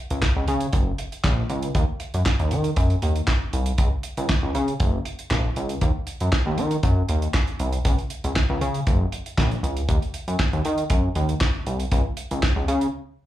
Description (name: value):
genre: early-eighties boogie funk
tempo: 118 BPM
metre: 4/4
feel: straight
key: Eb dorian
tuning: A4 = 437 Hz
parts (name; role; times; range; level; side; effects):
- chorused synth bass; bass; 0.1-12.9 s; Gb1 to Eb3; -22 LUFS; equal; none
- damped 70s drum kit; drums; 0.1-12.9 s; handclaps, hi-hat, kick drum, snare drum; -24 LUFS; equal; none
room: little or no reverb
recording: live gig heard through the venue's PA, club reverb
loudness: -21 LUFS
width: side -13 dB against mid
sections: 0.0-13.3 A section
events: break 12.9-13.3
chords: none